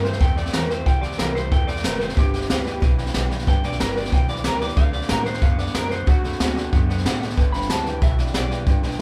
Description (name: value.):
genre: rockabilly.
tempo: 184 BPM.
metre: 4/4.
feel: straight.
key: G major.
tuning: A4 = 438 Hz.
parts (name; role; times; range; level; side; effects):
electric guitar through a small old amp; melody; 0.0-8.7 s; F#4 to B5; -30 LUFS; equal; none.
clear upright piano; accompaniment; 0.0-9.0 s; A4 to A5; -40 LUFS; equal; none.
picked steel-string acoustic guitar; accompaniment; 0.0-9.0 s; G2 to G4; -36 LUFS; equal; none.
electric guitar through a small old amp; riff; 0.0-9.0 s; G2 to B3; -34 LUFS; equal; none.
upright bass; bass; 0.0-9.0 s; F1 to A2; -29 LUFS; equal; none.
jazz brush drum kit; drums; 0.0-9.0 s; hi-hat, kick drum, snare drum; -23 LUFS; equal; none.
room: moderate large studio reverb, RT60 1.3 s.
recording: band playing live in one room.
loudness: -21 LUFS.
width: mono.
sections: 0.0-9.0 A section.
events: clean electric guitar solo 0.0-9.0; upright piano fill 6.4-7.4.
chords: 0.0 C; 2.2 G; 4.8 D; 7.4 G.